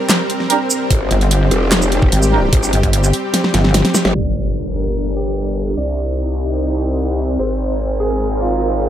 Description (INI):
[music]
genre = heavy wobble dubstep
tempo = 148 BPM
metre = 4/4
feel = half-time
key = G phrygian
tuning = A4 = 441 Hz
[part]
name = supersaw pad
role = sustained chords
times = 0.0-8.9 s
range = G3 to Bb4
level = -21 LUFS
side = equal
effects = sidechain pumping
[part]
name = dubstep drum kit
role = drums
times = 0.1-8.8 s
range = handclaps, hi-hat, shaker, snare drum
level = -16 LUFS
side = equal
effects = low-pass filter on hats, small room ambience, low-pass filter on snare, low-pass filter on perc
[part]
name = dark brass ensemble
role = stabs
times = 0.5-2.4 s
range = D4 to Bb4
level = -21 LUFS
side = right 5 dB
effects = digital delay
[part]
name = growl bass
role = bass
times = 0.9-8.9 s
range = F1 to C2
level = -19 LUFS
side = equal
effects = chorus, overdrive
[part]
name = electronic kick drum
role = drums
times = 0.9-2.9 s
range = none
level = -16 LUFS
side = equal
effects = small room ambience
[part]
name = pulsing pluck wobble bass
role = bass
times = 1.1-3.8 s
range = G1 to Ab1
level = -14 LUFS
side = equal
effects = chorus, overdrive
[part]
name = warm grand piano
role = melody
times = 4.1-8.9 s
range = F4 to D5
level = -25 LUFS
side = right 2 dB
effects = digital delay
[part]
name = impact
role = sound effects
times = 4.1-5.8 s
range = none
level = -24 LUFS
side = equal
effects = none
[sound]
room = light reverb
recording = low-pass filter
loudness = -14 LUFS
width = side -11 dB against mid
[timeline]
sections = 0.0-4.1 A section; 4.1-8.9 B section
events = drop 0.0-4.1; drum fill 3.3-4.1; band accent 4.0; impact 4.1-5.8; filter sweep 4.1-8.9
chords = 0.0 Gm; 5.8 Cm; 7.4 Abadd9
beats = 0.10 0.50 | 0.91 1.31 1.72 2.12 | 2.53 2.93 3.34 3.74 | 4.15 4.55 4.96 5.37 | 5.77 6.18 6.58 6.99 | 7.39 7.80 8.20 8.61